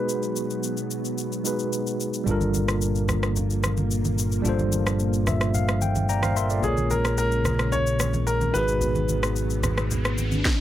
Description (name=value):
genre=amapiano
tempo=110 BPM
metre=4/4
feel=straight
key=unclear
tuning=A4 = 440 Hz
part: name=warm grand piano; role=melody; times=0.0-2.0, 6.6-10.4 s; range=Ab4 to Db5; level=-28 LUFS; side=left 1 dB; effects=low-pass filter, tape echo
part: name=tine electric piano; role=accompaniment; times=0.0-10.5 s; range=G3 to C6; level=-28 LUFS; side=equal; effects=medium stereo tremolo, low-pass filter
part: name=ensemble organ-string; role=sustained chords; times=0.0-10.4 s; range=Bb2 to Db4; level=-32 LUFS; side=equal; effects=ensemble chorus, sidechain pumping, low-pass filter
part: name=afro-pop drum kit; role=drums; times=0.1-10.6 s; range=kick drum, rim click, shaker, snare drum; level=-29 LUFS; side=left 1 dB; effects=none
part: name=fingered electric bass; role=bass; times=2.3-10.4 s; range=G1 to Bb1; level=-25 LUFS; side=equal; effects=none
part: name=congas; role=percussion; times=2.3-10.4 s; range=none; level=-32 LUFS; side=right 1 dB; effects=none
part: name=riser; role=sound effects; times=9.5-10.6 s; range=none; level=-33 LUFS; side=left 1 dB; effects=none
room=light reverb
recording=none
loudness=-22 LUFS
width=side -12 dB against mid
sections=0.0-10.6 A section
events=filter sweep 0.0-10.6; tine electric piano fill 5.0-6.6; riser 9.5-10.6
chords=0.0 Abm7; 2.3 Gm9; 6.6 Bbm7; 8.5 Abm7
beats=| 0.09 0.63 1.18 1.73 | 2.27 2.82 3.36 3.91 | 4.45 5.00 5.54 6.09 | 6.63 7.18 7.72 8.27 | 8.82 9.36 9.91 10.45